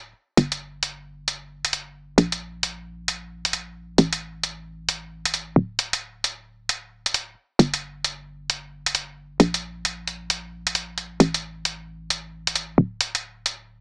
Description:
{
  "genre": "UK garage, two-step garage",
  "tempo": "133 BPM",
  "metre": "4/4",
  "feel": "swing 63% on 16ths",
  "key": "unclear",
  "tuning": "A4 = 436 Hz",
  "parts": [
    { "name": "hollow knocking FM bass", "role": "bass", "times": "0.0-13.8 s", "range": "D1 to Bb1", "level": "-17 LUFS", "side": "equal", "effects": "none" },
    { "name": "electronic hi-hat", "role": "drums", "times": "0.4-13.6 s", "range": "none", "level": "-23 LUFS", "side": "equal", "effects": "none" }
  ],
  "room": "little or no reverb",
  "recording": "small speaker sound",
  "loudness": "-23 LUFS",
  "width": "side -31 dB against mid",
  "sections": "0.0-13.8 A section",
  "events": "none",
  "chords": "none"
}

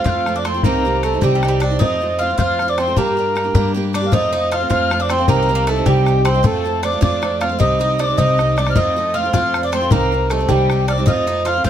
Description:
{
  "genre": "celtic folk, Celtic jig",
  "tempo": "104 BPM (dotted quarters)",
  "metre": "6/8",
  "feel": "straight",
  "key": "unclear",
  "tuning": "A4 = 440 Hz",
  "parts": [
    { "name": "mellow accordion", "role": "melody", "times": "0.0-11.7 s", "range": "G4 to F5", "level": "-20 LUFS", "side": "right 2 dB", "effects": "none" },
    { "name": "Irish bouzouki", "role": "second line", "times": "0.0-11.7 s", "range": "G3 to F4", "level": "-26 LUFS", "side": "right 1 dB", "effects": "none" },
    { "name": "mellow wooden whistle", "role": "second line", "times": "0.0-11.7 s", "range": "G5 to G6", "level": "-25 LUFS", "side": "left 7 dB", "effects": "none" },
    { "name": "picked twelve-string acoustic guitar", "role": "accompaniment", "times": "0.0-11.7 s", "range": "C3 to G4", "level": "-22 LUFS", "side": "right 5 dB", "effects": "none" },
    { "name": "upright bass", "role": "bass", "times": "0.1-11.7 s", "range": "C2 to G2", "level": "-21 LUFS", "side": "left 1 dB", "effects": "none" },
    { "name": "bodhran", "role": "percussion", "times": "0.1-11.7 s", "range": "none", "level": "-19 LUFS", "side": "left 3 dB", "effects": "none" }
  ],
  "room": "light reverb",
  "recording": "none",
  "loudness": "-14 LUFS",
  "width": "side -10 dB against mid",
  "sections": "0.0-4.1 A section; 4.1-11.7 A section",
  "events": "none",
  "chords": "0.0 F; 0.6 Cm; 1.8 F; 3.0 Gm; 4.1 F; 5.3 Cm; 6.4 F; 7.6 Cm; 8.8 F; 9.9 Cm; 11.1 F"
}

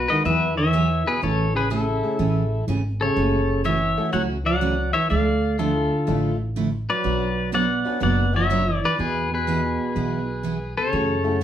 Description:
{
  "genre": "country, western swing",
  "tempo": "124 BPM",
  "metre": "4/4",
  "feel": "swing 67% on 8ths",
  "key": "unclear",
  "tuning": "A4 = 437 Hz",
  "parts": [
    { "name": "pedal steel guitar", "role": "melody", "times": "0.0-11.4 s", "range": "E4 to F#5", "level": "-24 LUFS", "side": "left 2 dB", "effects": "none" },
    { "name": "breathy trombone", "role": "second line", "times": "0.0-11.4 s", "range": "B2 to B3", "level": "-25 LUFS", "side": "right 2 dB", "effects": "none" },
    { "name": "upright bass", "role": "bass", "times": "0.0-11.4 s", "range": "F#1 to F#2", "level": "-26 LUFS", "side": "equal", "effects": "none" },
    { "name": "tack piano", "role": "accompaniment", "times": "0.1-11.4 s", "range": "G#3 to C#5", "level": "-31 LUFS", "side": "left 4 dB", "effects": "none" },
    { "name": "picked steel-string acoustic guitar", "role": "accompaniment", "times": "0.3-11.4 s", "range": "B2 to C#5", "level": "-27 LUFS", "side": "right 4 dB", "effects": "none" }
  ],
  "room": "wet studio reverb, RT60 0.6 s",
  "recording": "band playing live in one room",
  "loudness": "-20 LUFS",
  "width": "side -10 dB against mid",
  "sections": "0.0-3.2 A section; 3.2-11.4 B section",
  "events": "none",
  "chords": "0.3 Eadd9; 1.2 Amaj7; 3.2 F#m7; 5.1 Dmadd9; 7.0 Bmadd9; 9.0 E; 10.9 F#m7"
}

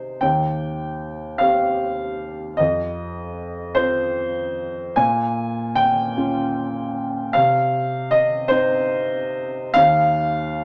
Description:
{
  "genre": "neoclassical minimalist piano",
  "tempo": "51 BPM (dotted quarters)",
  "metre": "6/8",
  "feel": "rubato",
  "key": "F minor",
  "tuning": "A4 = 435 Hz",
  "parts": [
    { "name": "warm upright piano", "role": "solo", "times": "0.0-10.6 s", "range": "Eb2 to Ab5", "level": "-21 LUFS", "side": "equal", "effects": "none" }
  ],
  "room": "moderate studio reverb, RT60 0.6 s",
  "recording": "none",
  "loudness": "-21 LUFS",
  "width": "mono",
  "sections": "0.0-10.6 A section",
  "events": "none",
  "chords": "0.2 Eb6; 2.6 F5; 5.0 Bbm7; 7.3 Cmadd11; 9.8 Cmadd11/Eb (rootless)"
}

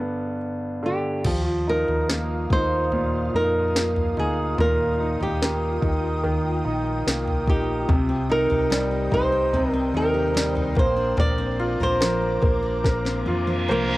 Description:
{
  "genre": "pop ballad",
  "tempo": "72 BPM",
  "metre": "4/4",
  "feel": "straight",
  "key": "unclear",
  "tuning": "A4 = 442 Hz",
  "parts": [
    { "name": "flamenco guitar", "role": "melody", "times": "0.0-14.0 s", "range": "Bb3 to D5", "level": "-24 LUFS", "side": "right 1 dB", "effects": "cassette tape" },
    { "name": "bright grand piano", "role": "accompaniment", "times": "0.0-14.0 s", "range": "G2 to C5", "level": "-26 LUFS", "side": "right 1 dB", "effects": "none" },
    { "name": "fingered electric bass", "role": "bass", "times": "1.2-14.0 s", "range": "Bb1 to F2", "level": "-28 LUFS", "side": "equal", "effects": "none" },
    { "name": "smooth R&B drum kit", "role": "drums", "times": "1.2-13.7 s", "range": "crash cymbal, kick drum, snare drum, toms", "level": "-25 LUFS", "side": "equal", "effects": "cassette tape" },
    { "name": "ethereal airy pad", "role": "sustained chords", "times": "1.8-14.0 s", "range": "F4 to Eb6", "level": "-34 LUFS", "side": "equal", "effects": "ensemble chorus, built-in reverb" },
    { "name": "picked steel-string acoustic guitar", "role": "arpeggios", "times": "7.9-14.0 s", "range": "Bb2 to Bb4", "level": "-29 LUFS", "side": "left 4 dB", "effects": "none" },
    { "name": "reverse cymbal", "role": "sound effects", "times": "13.2-14.0 s", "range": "none", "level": "-30 LUFS", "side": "right 2 dB", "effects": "none" }
  ],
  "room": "light reverb, digital ambience",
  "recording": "home recording on cassette",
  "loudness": "-20 LUFS",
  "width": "side -18 dB against mid",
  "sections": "0.0-1.2 A section; 1.2-14.0 B section",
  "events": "drum fill 12.8-14.0; reverse cymbal 13.2-14.0; grand piano fill 13.3-14.0",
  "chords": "0.0 G; 1.2 Ebadd9; 7.9 Cm; 10.8 Bbadd9"
}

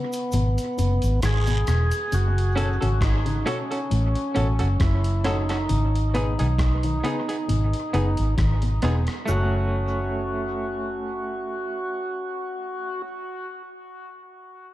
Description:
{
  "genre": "dub reggae",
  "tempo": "67 BPM",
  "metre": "4/4",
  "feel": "swing 56% on 16ths",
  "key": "F# dorian",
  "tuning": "A4 = 440 Hz",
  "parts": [
    { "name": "percussive tonewheel organ", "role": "melody", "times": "0.0-13.0 s", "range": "B3 to G#4", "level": "-29 LUFS", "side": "equal", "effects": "slow rotary speaker, dub echo" },
    { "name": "electric guitar with an envelope filter", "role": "arpeggios", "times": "0.0-9.5 s", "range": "A2 to D#3", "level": "-33 LUFS", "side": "left 4 dB", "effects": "spring reverb, dub echo" },
    { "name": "dusty soul sampler-style drum kit", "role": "drums", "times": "0.1-9.3 s", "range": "hi-hat, kick drum, rim click", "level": "-30 LUFS", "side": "equal", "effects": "none" },
    { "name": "cabasa and guiro", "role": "percussion", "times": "0.1-2.4, 9.3-9.7 s", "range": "none", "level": "-40 LUFS", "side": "right 3 dB", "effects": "dub echo" },
    { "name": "vintage muted fingered electric bass", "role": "bass", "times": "0.3-13.0 s", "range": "E1 to B1", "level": "-22 LUFS", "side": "equal", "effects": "none" },
    { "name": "electric guitar at the edge of break-up", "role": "accompaniment", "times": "2.6-13.1 s", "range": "A3 to A4", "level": "-32 LUFS", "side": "right 2 dB", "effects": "tremolo, dub echo" },
    { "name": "warm grand piano", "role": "stabs", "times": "2.6-13.0 s", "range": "A3 to C#5", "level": "-34 LUFS", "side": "left 2 dB", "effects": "dub echo" }
  ],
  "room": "light reverb",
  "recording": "dark, warm production",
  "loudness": "-21 LUFS",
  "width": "side -15 dB against mid",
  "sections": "0.0-2.1 A section; 2.1-9.3 B section; 9.3-12.9 C section",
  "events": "break 0.0-2.1; part muted 2.1-9.3",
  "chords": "0.0 G#m; 2.1 F#m; 5.7 G#m; 9.3 F#m"
}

